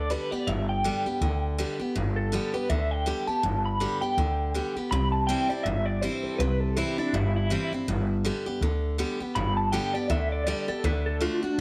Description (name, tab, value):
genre	rockabilly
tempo	162 BPM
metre	4/4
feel	swing 58% on 8ths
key	G major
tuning	A4 = 440 Hz
part	electric guitar through a small old amp	melody	0.0-11.6 s	D4 to B5	-32 LUFS	equal	tremolo, tape echo
part	picked steel-string acoustic guitar	accompaniment	0.0-11.6 s	G2 to G4	-33 LUFS	equal	none
part	upright bass	bass	0.0-11.6 s	G1 to D2	-30 LUFS	equal	none
room	light reverb, small room ambience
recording	none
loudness	-27 LUFS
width	mono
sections	0.0-11.6 A section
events	clean electric guitar solo 0.0-11.6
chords	0.0 G; 4.9 C; 7.9 G; 10.8 D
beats	0.10 | 0.47 0.84 1.21 1.58 | 1.95 2.32 2.69 3.06 | 3.43 3.80 4.17 4.54 | 4.91 5.28 5.65 6.02 | 6.39 6.76 7.13 7.50 | 7.88 8.25 8.62 8.99 | 9.36 9.73 10.10 10.47 | 10.84 11.21 11.58